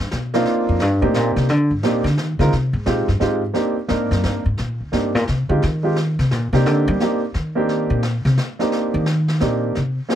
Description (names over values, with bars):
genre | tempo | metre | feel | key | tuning
jazz piano trio | 174 BPM | 3/4 | swing 65% on 8ths | C minor | A4 = 440 Hz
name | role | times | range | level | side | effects
upright bass | bass | 0.0-10.0 s | D2 to G3 | -19 LUFS | equal | none
snare drum and brushed snare drum | drums | 0.1-10.2 s | none | -30 LUFS | left 2 dB | none
clear grand piano | melody | 0.3-10.2 s | Ab3 to Bb4 | -20 LUFS | right 2 dB | none
room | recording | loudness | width
light reverb | dark, warm production | -17 LUFS | side -10 dB against mid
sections
0.0-1.5 A section; 1.5-10.2 A section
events
upright bass solo 0.0-10.2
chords
0.5 Cm7; 2.5 Fm7; 3.6 Cm7; 5.6 F7(no3) (rootless); 6.7 Cm7